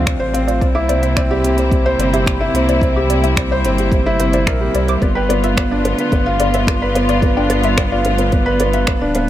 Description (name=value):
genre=piano and strings electronica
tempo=109 BPM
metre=4/4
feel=straight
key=unclear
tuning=A4 = 439 Hz
part: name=warm studio string section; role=sustained chords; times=0.0-9.3 s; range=C3 to F4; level=-21 LUFS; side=equal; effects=sidechain pumping
part: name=felt-muted upright piano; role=riff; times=0.0-9.3 s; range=B3 to C5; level=-17 LUFS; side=equal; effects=digital delay
part: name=round analog bass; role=bass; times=0.0-9.3 s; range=D1 to D2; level=-20 LUFS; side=equal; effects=sidechain pumping
part: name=warbly dusty pluck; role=arpeggios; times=0.1-9.2 s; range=C5 to D6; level=-25 LUFS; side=left 2 dB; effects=chorus, sidechain pumping, digital delay
part: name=electronic kick drum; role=drums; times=0.1-9.0 s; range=none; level=-19 LUFS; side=equal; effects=none
part: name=organic electronic drum kit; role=drums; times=0.1-9.3 s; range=finger snaps, hi-hat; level=-25 LUFS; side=right 1 dB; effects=overdrive
room=digital ambience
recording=none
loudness=-13 LUFS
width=side -12 dB against mid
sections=0.0-9.3 A section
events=none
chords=0.0 Dm7; 0.6 C7; 5.0 G7